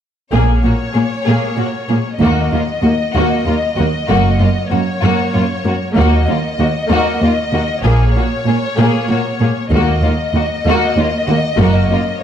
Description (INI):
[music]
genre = cinematic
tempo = 96 BPM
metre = 3/4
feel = straight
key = Eb minor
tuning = A4 = 439 Hz
[part]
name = rich symphonic violin section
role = melody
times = 0.3-12.2 s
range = Db5 to Eb5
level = -22 LUFS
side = left 3 dB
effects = none
[part]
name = rich symphonic violin section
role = second line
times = 0.3-12.0 s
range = F4 to Ab4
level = -21 LUFS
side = left 5 dB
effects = none
[part]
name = rich studio viola section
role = accompaniment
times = 0.3-12.0 s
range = Bb3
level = -19 LUFS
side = right 1 dB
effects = none
[part]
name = rich symphonic cello section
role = bass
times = 0.3-12.0 s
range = Eb2 to Bb2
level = -17 LUFS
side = right 1 dB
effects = none
[part]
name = rich symphonic double bass section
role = bass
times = 0.3-11.9 s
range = Gb1 to Eb2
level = -16 LUFS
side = right 1 dB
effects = none
[sound]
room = wet recital hall reverb, RT60 1.6 s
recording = dark, warm production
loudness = -12 LUFS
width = side -9 dB against mid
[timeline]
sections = 0.3-12.2 A section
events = build-up 0.3-12.2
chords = 0.3 Bbm7; 2.2 Ebm; 4.1 Gb; 6.0 Ebm; 7.8 Bbm7; 9.7 Ebm; 11.6 Gb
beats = | 0.34 0.96 1.59 | 2.21 2.84 3.47 | 4.09 4.72 5.34 | 5.97 6.59 7.22 | 7.85 8.47 9.10 | 9.72 10.35 10.97 | 11.60